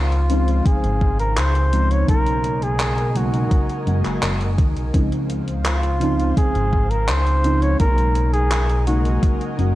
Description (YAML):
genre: vaporwave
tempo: 84 BPM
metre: 4/4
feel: straight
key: Db major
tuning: A4 = 439 Hz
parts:
  - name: mellow flugelhorn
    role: melody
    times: 0.0-9.5 s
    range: F4 to Db5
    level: -25 LUFS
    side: equal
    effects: tape echo
  - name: mellow FM electric piano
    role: accompaniment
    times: 0.0-9.8 s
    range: Db3 to Gb4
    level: -24 LUFS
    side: equal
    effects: phaser, analog chorus, tape echo
  - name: soft string machine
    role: sustained chords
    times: 0.0-9.8 s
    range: Bb4 to Ab5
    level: -34 LUFS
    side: left 1 dB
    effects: ensemble chorus
  - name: chorused synth bass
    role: bass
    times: 0.0-9.7 s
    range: Gb1 to Eb2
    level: -20 LUFS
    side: equal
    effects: tube saturation
  - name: gated 80s digital drum machine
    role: drums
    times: 0.1-9.7 s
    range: handclaps, hi-hat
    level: -28 LUFS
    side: equal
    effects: gated reverb, overdrive, vintage 12-bit sampler grit
  - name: electronic kick drum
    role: drums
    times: 0.7-9.4 s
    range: none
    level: -18 LUFS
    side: equal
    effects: overdrive, vintage 12-bit sampler grit
room: little or no reverb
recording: none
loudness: -17 LUFS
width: side -16 dB against mid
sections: 0.0-9.8 A section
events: none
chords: 0.0 Dbmaj7; 2.1 Cbmaj13; 4.9 Dbmaj7; 7.8 Cbmaj13